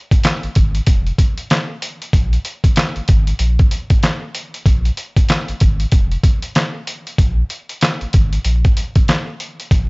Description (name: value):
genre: hip hop, boom-bap hip-hop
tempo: 95 BPM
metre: 4/4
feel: swing 61% on 16ths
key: unclear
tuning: A4 = 440 Hz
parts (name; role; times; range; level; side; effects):
- trip hop sampler-style drum kit; drums; 0.1-9.9 s; handclaps, hi-hat, kick drum, snare drum; -14 LUFS; equal; none
- warm sub bass; bass; 0.4-9.9 s; F1 to Bb1; -17 LUFS; equal; none
room: little or no reverb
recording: dry, gritty hardware recording, vinyl crackle, nothing above 7.7 kHz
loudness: -14 LUFS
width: side -32 dB against mid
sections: 0.0-9.9 A section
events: none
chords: none